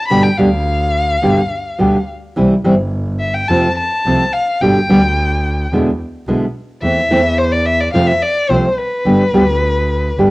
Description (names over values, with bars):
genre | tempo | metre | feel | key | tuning
tango | 107 BPM | 4/4 | rubato | unclear | A4 = 440 Hz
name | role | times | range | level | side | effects
warm violin | second line | 0.0-10.3 s | B4 to B5 | -17 LUFS | left 2 dB | none
nylon-string guitar | accompaniment | 0.1-10.3 s | B2 to G4 | -13 LUFS | equal | none
clear double bass | bass | 0.1-10.3 s | G1 to F2 | -19 LUFS | equal | none
room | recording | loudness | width
moderate studio reverb, RT60 0.6 s | home recording on cassette | -12 LUFS | side -20 dB against mid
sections
0.0-10.3 A section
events
violin solo 0.0-10.3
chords
0.1 G; 2.4 C; 3.5 F; 4.6 G; 5.7 E7; 6.8 Am/E; 7.9 F; 9.1 G